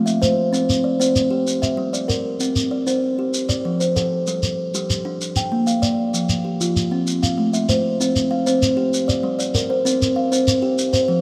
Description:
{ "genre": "southern african traditional, mbira-style interlocking cycle", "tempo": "128 BPM (dotted quarters)", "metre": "12/8", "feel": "straight", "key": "C mixolydian", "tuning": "A4 = 438 Hz", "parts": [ { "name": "kalimba", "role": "arpeggios", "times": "0.0-11.2 s", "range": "F3 to G5", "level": "-21 LUFS", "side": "equal", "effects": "none" }, { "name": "shekere", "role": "percussion", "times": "0.1-11.1 s", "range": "none", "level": "-26 LUFS", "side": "equal", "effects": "none" } ], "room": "wet plate reverb, RT60 3.3 s", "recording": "rough home demo mix", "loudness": "-20 LUFS", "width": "mono", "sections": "0.0-8.0 A section; 8.0-11.2 B section", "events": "none", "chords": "0.0 Am; 0.5 C5; 1.5 Gm; 2.4 C5; 3.3 F; 4.3 G5; 5.2 Bb; 6.1 F5; 7.1 Am; 8.0 C5; 8.9 Gm; 9.9 C5" }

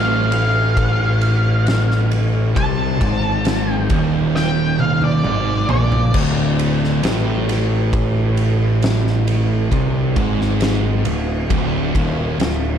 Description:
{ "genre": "stoner and doom metal", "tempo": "67 BPM", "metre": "4/4", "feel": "straight", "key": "D phrygian", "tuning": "A4 = 441 Hz", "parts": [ { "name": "octave-fuzz lead guitar", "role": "melody", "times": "0.0-6.1 s", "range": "D5 to A5", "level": "-23 LUFS", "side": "equal", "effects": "distortion, analog delay" }, { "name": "overdriven semi-hollow guitar", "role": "riff", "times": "0.0-12.8 s", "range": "D2 to C3", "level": "-23 LUFS", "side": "equal", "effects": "none" }, { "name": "thick fuzz guitar", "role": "riff", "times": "0.0-12.8 s", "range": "D2 to C3", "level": "-23 LUFS", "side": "left 6 dB", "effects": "distortion" }, { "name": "thick fuzz guitar", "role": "riff", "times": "0.0-12.8 s", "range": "D2 to C3", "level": "-22 LUFS", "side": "right 6 dB", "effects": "distortion" }, { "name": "fuzz picked electric bass", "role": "bass", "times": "0.0-12.8 s", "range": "D1 to C2", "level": "-23 LUFS", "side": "equal", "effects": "overdrive" }, { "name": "oversized low-tuned drum kit", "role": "drums", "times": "0.3-12.6 s", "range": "crash cymbal, kick drum, ride cymbal, snare drum, toms", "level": "-22 LUFS", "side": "equal", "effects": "none" } ], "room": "light reverb, small room ambience", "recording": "dark, warm production", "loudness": "-15 LUFS", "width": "side -8 dB against mid", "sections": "0.0-6.1 A section; 6.1-12.8 B section", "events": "lead electric guitar solo 0.0-6.1; drum fill 4.3-6.1", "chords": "0.0 D5" }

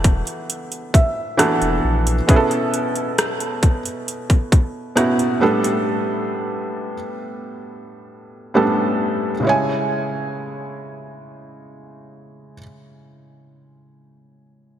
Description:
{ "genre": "contemporary R&B", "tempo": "67 BPM", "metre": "4/4", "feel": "straight", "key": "C# phrygian", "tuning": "A4 = 440 Hz", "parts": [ { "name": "felt-muted upright piano", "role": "accompaniment", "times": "0.0-14.8 s", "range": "A2 to A5", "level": "-20 LUFS", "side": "right 1 dB", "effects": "none" }, { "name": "warm sub bass", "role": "bass", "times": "0.0-2.2 s", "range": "E1 to A#1", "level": "-20 LUFS", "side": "equal", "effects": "none" }, { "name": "trap drum kit", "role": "drums", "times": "0.0-5.8 s", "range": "hi-hat, kick drum, rim click", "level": "-17 LUFS", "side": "equal", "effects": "overdrive, gated reverb" }, { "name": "downlifter", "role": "sound effects", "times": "0.4-2.3 s", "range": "none", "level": "-49 LUFS", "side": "equal", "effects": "none" } ], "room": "moderate lush hall reverb, RT60 3.0 s", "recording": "bright 1980s-style digital production", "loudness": "-17 LUFS", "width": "side -10 dB against mid", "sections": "0.0-9.4 A section; 9.4-13.0 B section", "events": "felt piano fill 0.5-2.3", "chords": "0.0 E9sus4; 2.3 B9sus4; 5.4 A9sus4; 9.4 C#m" }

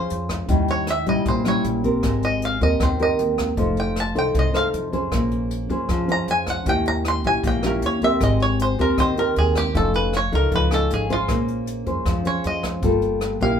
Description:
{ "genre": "bossa nova", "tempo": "156 BPM", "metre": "4/4", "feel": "straight", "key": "F minor", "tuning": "A4 = 439 Hz", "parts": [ { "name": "bluegrass banjo", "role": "melody", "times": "0.0-13.6 s", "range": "F4 to C6", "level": "-24 LUFS", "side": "equal", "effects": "none" }, { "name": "nylon-string guitar", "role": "accompaniment", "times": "0.0-13.6 s", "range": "Bb2 to C5", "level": "-22 LUFS", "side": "left 1 dB", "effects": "none" }, { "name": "upright bass", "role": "bass", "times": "0.0-13.6 s", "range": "F1 to F2", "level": "-25 LUFS", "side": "equal", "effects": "none" }, { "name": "jazz brush drum kit", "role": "drums", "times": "0.1-13.5 s", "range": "hi-hat, kick drum, rim click", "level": "-28 LUFS", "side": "equal", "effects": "none" } ], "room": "moderate studio reverb, RT60 0.5 s", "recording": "band playing live in one room", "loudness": "-19 LUFS", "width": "side -8 dB against mid", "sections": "0.0-13.6 A section", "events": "five-string banjo solo 0.0-13.6", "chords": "0.5 Eb7b9; 2.0 Abmaj9; 3.6 F7; 5.1 Bbm9; 6.7 Eb7b9; 8.2 Abmaj9; 9.7 F7alt; 11.3 Bbm9; 12.8 Gm9" }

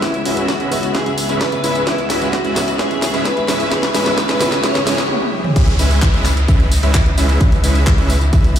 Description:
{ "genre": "EDM, festival progressive house", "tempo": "130 BPM", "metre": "4/4", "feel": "straight", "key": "C# minor", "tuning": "A4 = 440 Hz", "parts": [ { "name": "airy dreamy lead", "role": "melody", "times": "0.0-5.1 s", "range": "E4 to C#5", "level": "-22 LUFS", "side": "equal", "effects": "chorus, ping-pong delay" }, { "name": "clear grand piano", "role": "accompaniment", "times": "0.0-5.1 s", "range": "C#3 to E4", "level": "-24 LUFS", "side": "right 1 dB", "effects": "vintage 12-bit sampler grit, sidechain pumping, ping-pong delay" }, { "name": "clear symphonic string section", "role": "sustained chords", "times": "0.0-8.6 s", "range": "C#2 to E5", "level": "-26 LUFS", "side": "left 2 dB", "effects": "sidechain pumping" }, { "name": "supersaw chords", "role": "riff", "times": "0.0-8.5 s", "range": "G#3 to G#5", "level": "-21 LUFS", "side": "right 1 dB", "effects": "sidechain pumping, low-pass filter, ping-pong delay" }, { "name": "electronic kick drum", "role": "drums", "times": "0.0-8.4 s", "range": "none", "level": "-15 LUFS", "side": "equal", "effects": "high-pass filter on kick, high-pass filter on room" }, { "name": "house drum kit", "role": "drums", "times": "0.0-8.6 s", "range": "crash cymbal, handclaps, hi-hat, snare drum, tambourine, toms", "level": "-21 LUFS", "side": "equal", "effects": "none" }, { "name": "riser and downlifter", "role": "sound effects", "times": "1.7-8.6 s", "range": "none", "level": "-29 LUFS", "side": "equal", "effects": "none" }, { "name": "saturated sub bass", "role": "bass", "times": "5.6-8.6 s", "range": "C#2", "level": "-16 LUFS", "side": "equal", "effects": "sidechain pumping" } ], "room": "moderate lush hall reverb, RT60 1.8 s, digital ambience", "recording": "played on a big sound system in a bare room, large studio reverb", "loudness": "-13 LUFS", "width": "side -10 dB against mid", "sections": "0.0-5.6 A section; 5.6-8.6 B section", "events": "build-up 0.0-5.6; drum fill 0.0-5.1, 5.1-5.6; filter sweep on supersaw synth 0.0-5.6; break 5.1-5.6; drop 5.6-8.6", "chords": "0.0 C#m7" }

